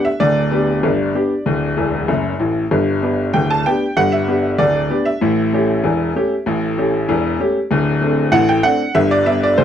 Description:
ragtime piano; 96 BPM; 2/4; straight; G major; A4 = 441 Hz
bright upright piano; solo; 0.0-9.6 s; D1 to A5; -14 LUFS; equal
moderate studio reverb, RT60 0.6 s; -14 LUFS; side -9 dB against mid
0.0-9.6 A section
upright piano fill 1.8-2.7
0.0 G/D; 1.5 D; 2.7 G; 5.2 A7; 7.7 D5; 8.9 G
| 0.20 0.83 | 1.46 2.08 | 2.71 3.34 | 3.96 4.59 | 5.21 5.83 | 6.46 7.08 | 7.70 8.32 | 8.95 9.57

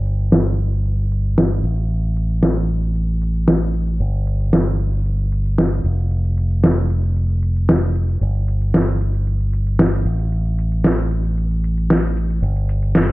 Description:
nu-disco, nu disco; 114 BPM; 4/4; straight; A4 = 440 Hz
fingered electric bass with an envelope filter; bass; 0.0-13.1 s; F1 to A1; -18 LUFS; equal
electronic shaker and snare drum; drums; 0.1-13.1 s; -18 LUFS; equal; overdrive, low-pass filter on perc, low-pass filter on snare, low-pass filter on room
light reverb; low-pass filter; -16 LUFS; side -19 dB against mid
0.0-13.1 A section
filter sweep 0.0-13.1
0.32 0.84 1.37 | 1.90 2.42 2.95 3.48 | 4.00 4.53 5.05 5.58 | 6.11 6.63 7.16 7.68 | 8.21 8.74 9.26 9.79 | 10.32 10.84 11.37 11.90 | 12.42 12.95

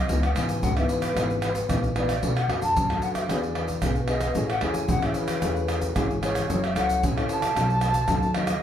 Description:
samba and choro; 113 BPM; 4/4; straight; A4 = 440 Hz
baroque flute; melody; 0.0-8.6 s; B4 to A5; -28 LUFS; equal
nylon-string guitar; accompaniment; 0.0-8.6 s; F#2 to A4; -28 LUFS; left 2 dB
upright bass; bass; 0.0-8.6 s; F#1 to F#2; -29 LUFS; equal
egg shaker, surdo, pandeiro and tamborim; percussion; 0.1-8.6 s; -27 LUFS; right 1 dB
wet studio reverb, RT60 0.5 s; heard from further back in the room; -22 LUFS; side -10 dB against mid
0.0-8.6 A section
0.1 C#m9; 2.2 Bm7; 3.3 E7; 4.4 Amaj7; 6.5 F#m7; 7.6 B7
| 0.10 0.63 1.17 1.70 | 2.23 2.76 3.30 3.83 | 4.36 4.90 5.43 5.96 | 6.50 7.03 7.56 8.10

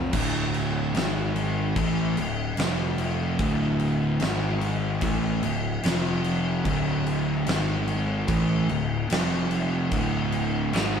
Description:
stoner and doom metal; 74 BPM; 4/4; straight; A4 = 438 Hz
fuzz guitar; riff; 0.0-11.0 s; D2 to A3; -25 LUFS; equal; distortion
fuzz picked electric bass; bass; 0.0-11.0 s; D1 to A1; -30 LUFS; equal; overdrive
big rock drum kit; drums; 0.1-10.9 s; crash cymbal, kick drum, snare drum; -29 LUFS; left 1 dB
light reverb; band playing live in one room; -23 LUFS; side -7 dB against mid
0.1-11.0 A section
0.1 D5; 1.0 G#5; 1.8 D5; 2.6 F5; 3.4 D5; 4.2 G#5; 5.0 D5; 5.8 F5; 6.7 D5; 7.5 G#5; 8.3 D5; 9.1 F5; 9.9 D5
| 0.14 0.95 1.77 2.58 | 3.40 4.21 5.03 5.84 | 6.66 7.47 8.29 9.10 | 9.92 10.73

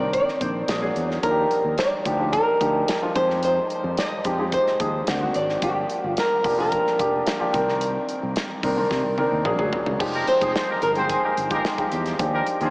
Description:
polished 1980s jazz-funk pop; 109 BPM; 4/4; straight; A4 = 440 Hz
flamenco guitar; melody; 0.0-12.7 s; G4 to Eb5; -23 LUFS; equal
warm grand piano; accompaniment; 0.0-12.7 s; Eb3 to G5; -24 LUFS; equal; wide subtle chorus
fingered electric bass; bass; 0.0-12.7 s; F1 to C3; -30 LUFS; equal
modern studio drum kit; drums; 0.1-12.7 s; crash cymbal, hi-hat, kick drum, snare drum, toms; -30 LUFS; equal
clear horn section; second line; 10.1-12.7 s; Bb3 to C5; -26 LUFS; equal; analog delay
wet cathedral reverb, RT60 7.1 s; dreamy mix soaked in reverb, small speaker sound; -20 LUFS; side -26 dB against mid
0.0-10.0 A section; 10.0-12.7 B section
drum fill 8.9-10.0
0.0 Cm9; 0.7 Bbaug7; 1.2 Ebmaj9; 3.2 Fm9; 5.1 D7b9; 5.6 Gm7; 7.5 Cm9; 9.5 Bb7alt; 10.0 Fm9; 12.2 Ebmaj9
0.14 0.69 | 1.24 1.78 2.33 2.88 | 3.43 3.98 4.53 5.08 | 5.62 6.17 6.72 7.27 | 7.82 8.37 8.91 9.46 | 10.01 10.56 11.10 11.65 | 12.20

